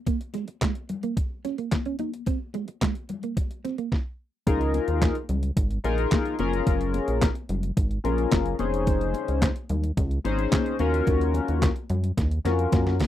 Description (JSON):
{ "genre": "early-eighties boogie funk", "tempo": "109 BPM", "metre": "4/4", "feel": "straight", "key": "Db major", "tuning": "A4 = 439 Hz", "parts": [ { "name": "mellow electric guitar", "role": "riff", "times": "0.1-3.9 s", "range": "Ab3 to Eb4", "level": "-30 LUFS", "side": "right 9 dB", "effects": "wide subtle chorus" }, { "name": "detuned 8-bit digital drum machine", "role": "drums", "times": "0.1-13.1 s", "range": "handclaps, hi-hat, kick drum, snare drum", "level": "-25 LUFS", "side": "equal", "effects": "overdrive" }, { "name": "congas", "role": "percussion", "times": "0.1-13.1 s", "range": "none", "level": "-34 LUFS", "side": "left 8 dB", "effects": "none" }, { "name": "chorused polysynth", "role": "accompaniment", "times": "4.5-13.0 s", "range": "Db4 to C5", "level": "-26 LUFS", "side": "left 4 dB", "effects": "none" }, { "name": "rubbery square bass", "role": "bass", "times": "4.5-13.1 s", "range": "F1 to Gb2", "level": "-26 LUFS", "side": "equal", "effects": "none" } ], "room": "little or no reverb", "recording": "dry, close 1970s-style studio recording", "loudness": "-23 LUFS", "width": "side -12 dB against mid", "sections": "0.0-4.5 A section; 4.5-13.1 B section", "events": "drum fill 12.2-13.1", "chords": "0.0 Bbm7; 2.0 Abadd9; 4.5 Db69; 6.4 Gbmaj9; 8.6 Dbmaj9/F; 10.8 Ebm9" }